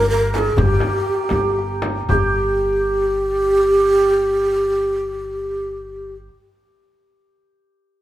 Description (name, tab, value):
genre	Persian modal ensemble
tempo	73-89 BPM (dotted quarters)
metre	6/8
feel	straight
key	unclear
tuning	A4 = 440 Hz
part	breathy mellow low ney	melody	0.0-6.2 s	G4 to Bb4	-17 LUFS	right 1 dB	none
part	santur	second line	0.0-6.3 s	G4 to D5	-25 LUFS	right 2 dB	none
part	upright bass	bass	0.0-6.3 s	G1	-24 LUFS	equal	none
part	tombak	percussion	0.3-2.3 s	none	-25 LUFS	left 2 dB	none
part	frame drum	percussion	0.4-2.3 s	none	-26 LUFS	left 2 dB	none
room	moderate stone room reverb, RT60 1.4 s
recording	band playing live in one room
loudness	-16 LUFS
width	side -14 dB against mid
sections	0.0-2.1 A section; 2.1-5.4 B section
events	slowing down 0.0-2.1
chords	none